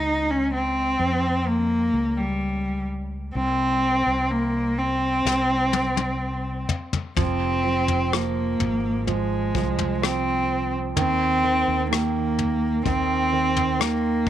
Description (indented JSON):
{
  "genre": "pop ballad",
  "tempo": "63 BPM",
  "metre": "4/4",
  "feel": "straight",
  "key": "F minor",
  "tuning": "A4 = 439 Hz",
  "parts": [
    { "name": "warm cello", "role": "melody", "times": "0.0-14.3 s", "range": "G3 to Eb4", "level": "-22 LUFS", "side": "equal", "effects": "slapback echo" },
    { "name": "fretless electric bass", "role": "bass", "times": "0.0-14.2 s", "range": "F1 to F2", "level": "-28 LUFS", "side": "equal", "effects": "ensemble chorus" },
    { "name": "soft brush drum kit", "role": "drums", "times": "5.3-14.3 s", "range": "kick drum, rim click, snare drum, toms", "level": "-26 LUFS", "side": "left 5 dB", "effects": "none" },
    { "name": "clear concert grand piano", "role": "accompaniment", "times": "7.2-14.3 s", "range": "Eb3 to F3", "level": "-28 LUFS", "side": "right 13 dB", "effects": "none" }
  ],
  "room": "moderate spring reverb, RT60 2.9 s",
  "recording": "1960s-style stereo",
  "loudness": "-21 LUFS",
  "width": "side -11 dB against mid",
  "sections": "0.0-14.3 A section",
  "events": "drum fill 5.2-7.2",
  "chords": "0.0 Dbmaj7#11; 3.3 N.C.; 7.2 Fm; 11.0 Eb5"
}